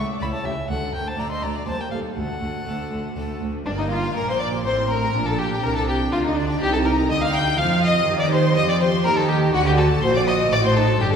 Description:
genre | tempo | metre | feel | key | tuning
classical, baroque-style concerto movement with solo episodes | 122 BPM | 3/4 | straight | G minor | A4 = 440 Hz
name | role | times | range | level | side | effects
rich studio violin section | melody | 0.0-11.2 s | C4 to G6 | -30 LUFS | left 5 dB | none
warm violin | melody | 0.0-11.2 s | D4 to C6 | -25 LUFS | left 2 dB | none
rich chamber violin section | second line | 0.0-11.2 s | D4 to G5 | -26 LUFS | left 1 dB | none
harpsichord | accompaniment | 0.0-11.2 s | C#2 to C5 | -33 LUFS | right 2 dB | none
rich symphonic viola section | accompaniment | 0.0-11.2 s | G3 to G4 | -28 LUFS | right 1 dB | none
rich chamber cello section | bass | 0.0-11.2 s | C#2 to F3 | -26 LUFS | right 2 dB | none
warm chamber double bass section | bass | 0.0-11.2 s | G1 to F2 | -26 LUFS | right 2 dB | none
room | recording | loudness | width
wet scoring stage reverb, RT60 1.9 s | heard from further back in the room | -19 LUFS | side -7 dB against mid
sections
0.0-3.7 A section; 3.7-11.2 B section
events
none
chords
0.0 A/C#; 0.7 D5; 1.7 Cm/Eb; 2.2 D; 3.7 Gm; 5.1 Gm/Bb; 6.6 Cm; 8.1 Cm/Eb; 9.5 D7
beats
0.20 | 0.69 1.18 1.67 | 2.17 2.67 3.17 | 3.67 4.16 4.66 | 5.15 5.64 6.13 | 6.62 7.11 7.60 | 8.08 8.57 9.06 | 9.55 10.04 10.52 | 11.01

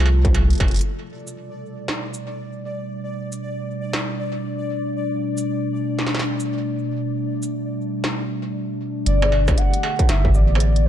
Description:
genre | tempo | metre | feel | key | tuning
IDM | 117 BPM | 4/4 | swing 62% on 16ths | G major | A4 = 440 Hz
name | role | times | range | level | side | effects
warbly nostalgic lead | melody | 0.0-0.3, 9.1-10.9 s | B4 to F#5 | -25 LUFS | left 1 dB | lush chorus, digital delay
warbly tape-like pad | sustained chords | 0.0-10.9 s | B2 to G4 | -26 LUFS | equal | chorus, built-in reverb
round analog bass | bass | 0.0-0.8, 9.1-10.9 s | F1 to C2 | -17 LUFS | equal | none
industrial drum kit | drums | 0.0-10.8 s | hi-hat, shaker, snare drum, struck metal | -27 LUFS | right 1 dB | none
pulsing gated texture | texture | 0.0-9.1 s | A4 to D5 | -34 LUFS | left 3 dB | chorus, built-in reverb, sidechain pumping
electronic kick drum | drums | 0.2-0.7, 9.5-10.3 s | none | -18 LUFS | equal | distortion
room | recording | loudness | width
light reverb, digital ambience | dark, warm production | -20 LUFS | side -10 dB against mid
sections
0.9-9.1 A section; 9.1-10.9 B section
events
drum fill 0.6; filter sweep on ambient pad 0.9-9.1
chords
0.0 F; 0.9 Gadd9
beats
0.35 | 0.86 1.37 1.88 2.40 | 2.91 3.42 3.94 4.45 | 4.96 5.47 5.99 6.50 | 7.01 7.53 8.04 8.55 | 9.06 9.58 10.09 10.60

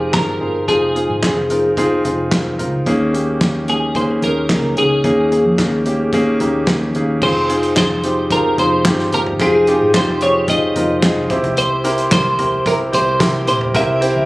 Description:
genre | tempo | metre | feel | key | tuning
piano-driven pop | 110 BPM | 4/4 | straight | F minor | A4 = 440 Hz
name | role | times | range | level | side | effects
twelve-string electric guitar | melody | 0.0-14.3 s | Ab4 to E5 | -18 LUFS | equal | analog chorus
clear baby grand piano | accompaniment | 0.0-14.3 s | C3 to Bb5 | -17 LUFS | equal | none
vintage muted picked electric bass | bass | 0.0-14.3 s | F1 to F2 | -24 LUFS | equal | none
natural country drum kit | drums | 0.1-14.1 s | crash cymbal, handclaps, hi-hat, kick drum, snare drum, toms | -20 LUFS | equal | none
tambourine | percussion | 11.8-14.1 s | none | -36 LUFS | equal | none
room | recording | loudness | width
moderate large studio reverb, RT60 1.3 s, small room reverb | recorded on a phone in the room, club reverb, compression | -13 LUFS | side -20 dB against mid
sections
0.0-7.2 A section; 7.2-14.3 B section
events
grand piano fill 6.1-7.2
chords
0.0 Fm7; 2.9 Eb7sus4; 7.2 Fm7; 11.3 C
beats
0.14 | 0.68 1.23 1.77 2.32 | 2.86 3.41 3.95 4.50 | 5.04 5.59 6.13 6.67 | 7.22 7.76 8.31 8.85 | 9.40 9.94 10.48 11.03 | 11.57 12.11 12.66 13.20 | 13.74

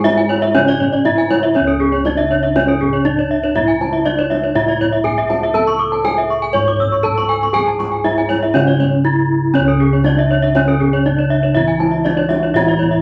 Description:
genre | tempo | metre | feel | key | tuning
Balinese gamelan | 120 BPM | 4/4 | straight | C# pelog | A4 = 440 Hz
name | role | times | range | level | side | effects
gamelan-type bronze metallophone | melody | 0.0-13.0 s | C#4 to C#5 | -20 LUFS | equal | none
gamelan-type bronze metallophone | accompaniment | 0.0-1.6, 9.6-13.0 s | C#3 to G#3 | -22 LUFS | equal | none
gamelan-type bronze metallophone | arpeggios | 0.0-13.0 s | G#4 to E6 | -22 LUFS | equal | none
gamelan-type bossed gongs | bass | 0.0-13.0 s | C#2 to A4 | -23 LUFS | equal | none
kendang | percussion | 0.1-13.0 s | none | -26 LUFS | equal | none
gamelan-type bronze metallophone | arpeggios | 0.2-12.8 s | A4 to D6+35c | -24 LUFS | equal | none
room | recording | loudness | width
wet club reverb, RT60 0.6 s | none | -15 LUFS | mono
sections
0.0-1.5 A section; 1.5-13.0 A section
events
none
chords
none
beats
0.05 0.55 1.05 | 1.55 2.05 2.55 3.05 | 3.55 4.05 4.55 5.05 | 5.55 6.05 6.55 7.05 | 7.55 8.05 8.55 9.05 | 9.55 10.05 10.55 11.05 | 11.55 12.05 12.55

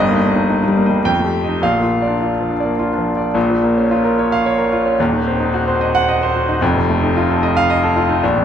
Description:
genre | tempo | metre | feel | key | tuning
classical, virtuoso piano study | 102-113 BPM | 3/4 | rubato | Bb major, Bb minor from 3.4 s | A4 = 440 Hz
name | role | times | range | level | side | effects
clear concert grand piano | solo | 0.0-8.4 s | Eb1 to G5 | -14 LUFS | equal | none
room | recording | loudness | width
wet recital hall reverb, RT60 1.9 s | minimal, uncompressed stereo recording | -14 LUFS | side -9 dB against mid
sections
0.0-3.4 A section; 3.4-8.4 B section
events
none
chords
0.0 Eb/G; 1.0 F9; 1.6 Bb; 3.4 Bbm; 5.0 Cdim/Eb; 6.6 F7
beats
0.49 1.05 | 1.62 2.21 2.79 | 3.36 3.91 4.46 | 4.99 5.53 6.08 | 6.62 7.16 7.69 | 8.22

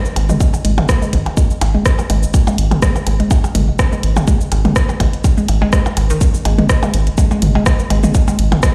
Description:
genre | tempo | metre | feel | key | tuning
minimal techno | 124 BPM | 4/4 | swing 55% on 16ths | unclear | A4 = 440 Hz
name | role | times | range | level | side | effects
house drum kit | drums | 0.1-8.7 s | hi-hat, rim click, shaker | -25 LUFS | equal | none
round analog bass | bass | 0.2-8.5 s | G#1 | -18 LUFS | equal | sidechain pumping
electronic percussion blips and toms | percussion | 0.2-8.7 s | none | -24 LUFS | equal | overdrive, delay
hollow square pluck | riff | 0.3-8.7 s | D#3 to G#3 | -23 LUFS | equal | chorus, sidechain pumping, delay
electronic kick drum | drums | 0.4-8.7 s | none | -16 LUFS | equal | none
room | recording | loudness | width
light reverb, digital ambience | played on a big sound system in a bare room, stone room reverb | -15 LUFS | mono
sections
0.0-8.7 A section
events
none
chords
0.0 G#5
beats
| 0.41 0.89 1.37 1.86 | 2.34 2.82 3.31 3.79 | 4.28 4.76 5.24 5.73 | 6.21 6.70 7.18 7.66 | 8.15 8.63

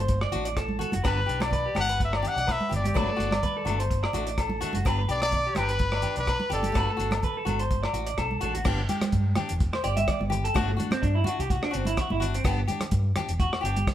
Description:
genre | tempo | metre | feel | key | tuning
highlife guitar band | 126 BPM | 4/4 | swing 54% on 16ths | G major | A4 = 440 Hz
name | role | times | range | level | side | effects
electric guitar through a small old amp | arpeggios | 0.0-13.9 s | B3 to E5 | -31 LUFS | right 3 dB | none
fingered electric bass | bass | 0.0-13.8 s | E1 to G2 | -29 LUFS | equal | none
warm soul drum kit | drums | 0.1-13.9 s | crash cymbal, hi-hat, kick drum, rim click | -30 LUFS | equal | none
picked steel-string acoustic guitar | accompaniment | 0.3-13.8 s | F#3 to G4 | -33 LUFS | left 5 dB | none
congas | percussion | 0.3-13.9 s | none | -34 LUFS | right 3 dB | none
agogo bells | percussion | 1.0-8.3 s | none | -36 LUFS | left 9 dB | none
bright trumpet | melody | 1.1-7.4 s | A4 to F#5 | -29 LUFS | left 2 dB | none
room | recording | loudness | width
moderate stone room reverb, RT60 1.0 s | band playing live in one room | -24 LUFS | side -11 dB against mid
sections
0.0-8.7 A section; 8.7-13.9 B section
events
drum fill 8.3-8.7; clean electric guitar solo 8.7-13.9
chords
0.0 D/G; 1.0 G; 3.0 D/G; 4.9 G; 6.8 D/G; 8.7 G5; 10.6 D/G; 12.4 G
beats
0.09 0.57 | 1.04 1.52 2.00 2.47 | 2.95 3.43 3.90 4.38 | 4.86 5.33 5.81 6.28 | 6.76 7.23 7.71 8.18 | 8.66 9.13 9.61 10.08 | 10.55 11.03 11.50 11.97 | 12.45 12.92 13.39 13.87

